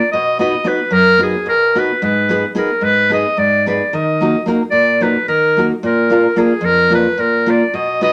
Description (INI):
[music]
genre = balkan folk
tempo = 220 BPM (eighths)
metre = 7/8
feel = straight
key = unclear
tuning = A4 = 440 Hz
[part]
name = bright clarinet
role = melody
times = 0.0-8.1 s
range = Ab4 to Eb5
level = -16 LUFS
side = equal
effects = none
[part]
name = nylon-string guitar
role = accompaniment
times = 0.1-8.1 s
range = F2 to B4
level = -19 LUFS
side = equal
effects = none
[sound]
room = wet studio reverb, RT60 0.6 s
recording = none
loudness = -15 LUFS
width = mono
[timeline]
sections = 0.0-8.1 A section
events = none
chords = 0.1 B; 2.0 Abm; 3.9 Ebm; 5.8 Bb